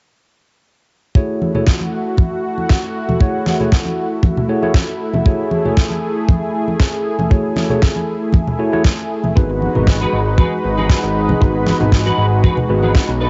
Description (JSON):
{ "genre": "nu-disco, nu disco", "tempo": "117 BPM", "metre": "4/4", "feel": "straight", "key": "F# minor", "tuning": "A4 = 440 Hz", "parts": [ { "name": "tine electric piano", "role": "accompaniment", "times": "1.2-12.9 s", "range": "A3 to C#5", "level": "-24 LUFS", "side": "equal", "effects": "sidechain pumping, cassette tape" }, { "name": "lush unison pad", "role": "sustained chords", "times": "1.2-13.3 s", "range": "G#3 to B4", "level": "-23 LUFS", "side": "equal", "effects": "chorus, sidechain pumping, cassette tape" }, { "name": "kick drum", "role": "drums", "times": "1.2-13.1 s", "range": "none", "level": "-14 LUFS", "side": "equal", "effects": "cassette tape" }, { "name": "congas", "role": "percussion", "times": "1.4-12.9 s", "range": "none", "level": "-24 LUFS", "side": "equal", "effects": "none" }, { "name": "electronic snare drum", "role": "drums", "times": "1.7-13.1 s", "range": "none", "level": "-26 LUFS", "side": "equal", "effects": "overdrive, cassette tape" }, { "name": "clean electric guitar", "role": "riff", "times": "9.4-13.3 s", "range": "D4 to B4", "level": "-24 LUFS", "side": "equal", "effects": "ensemble chorus, cassette tape, analog delay" }, { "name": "fat analog bass", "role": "bass", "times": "9.4-13.3 s", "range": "G#1 to B1", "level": "-20 LUFS", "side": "equal", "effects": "sidechain pumping" } ], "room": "moderate spring reverb, RT60 1.3 s, small room ambience", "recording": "home recording on cassette, nothing above 7.8 kHz", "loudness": "-16 LUFS", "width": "mono", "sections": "1.2-13.3 A section", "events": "none", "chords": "1.2 F#m7; 9.4 G#m7" }